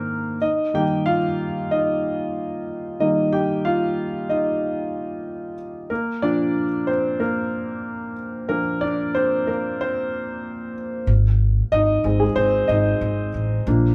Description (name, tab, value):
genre	piano-driven pop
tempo	93 BPM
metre	4/4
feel	straight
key	Eb major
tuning	A4 = 437 Hz
part	warm concert grand piano	accompaniment	0.0-13.9 s	Ab2 to G5	-23 LUFS	equal	none
part	upright bass	bass	11.1-13.9 s	Ab1 to Bb1	-22 LUFS	equal	none
room	moderate studio reverb, RT60 0.5 s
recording	band playing live in one room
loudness	-22 LUFS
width	mono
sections	0.0-11.1 A section; 11.1-13.9 B section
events	grand piano solo 0.0-11.1, 11.1-13.9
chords	0.4 Eb; 5.9 Bbadd9; 11.1 Ab